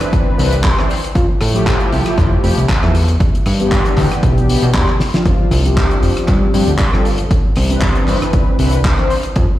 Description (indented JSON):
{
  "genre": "nu-disco, nu disco",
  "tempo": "117 BPM",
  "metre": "4/4",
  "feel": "swing 54% on 16ths",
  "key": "unclear",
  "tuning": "A4 = 440 Hz",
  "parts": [
    { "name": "mellow synth brass", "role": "accompaniment", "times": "0.0-9.1 s", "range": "E3 to C5", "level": "-19 LUFS", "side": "left 1 dB", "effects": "chorus, sidechain pumping, tape echo" },
    { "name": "damped 70s drum kit", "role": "drums", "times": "0.0-9.5 s", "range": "cabasa, handclaps, hi-hat, rim click, snare drum", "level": "-21 LUFS", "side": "equal", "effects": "none" },
    { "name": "electronic kick drum", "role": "drums", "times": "0.1-9.5 s", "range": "none", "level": "-16 LUFS", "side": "equal", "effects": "none" },
    { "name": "fat analog bass", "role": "bass", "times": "0.3-9.5 s", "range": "F1 to B2", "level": "-15 LUFS", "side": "equal", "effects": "none" }
  ],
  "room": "light reverb, studio ambience",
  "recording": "played on a big sound system in a bare room, large studio reverb",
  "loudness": "-12 LUFS",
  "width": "side -14 dB against mid",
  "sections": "0.0-9.6 A section",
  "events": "drum fill 5.0",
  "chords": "0.0 Cmaj9; 1.2 Fmaj9; 2.9 Em7; 5.3 G7sus4; 7.3 Cmaj9"
}